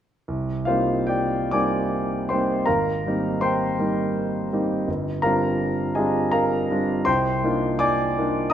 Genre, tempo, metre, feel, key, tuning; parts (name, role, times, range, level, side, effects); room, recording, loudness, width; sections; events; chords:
classical, impressionist solo piano; 82 BPM; 3/4; rubato; C minor; A4 = 438 Hz
clear concert grand piano; solo; 0.3-8.5 s; G1 to Eb6; -20 LUFS; equal
moderate concert hall reverb, RT60 2.0 s; -20 LUFS; side -10 dB against mid
0.3-8.5 A section
0.3 Cm9; 2.7 Abmaj9; 4.9 G7sus4; 7.1 Cm11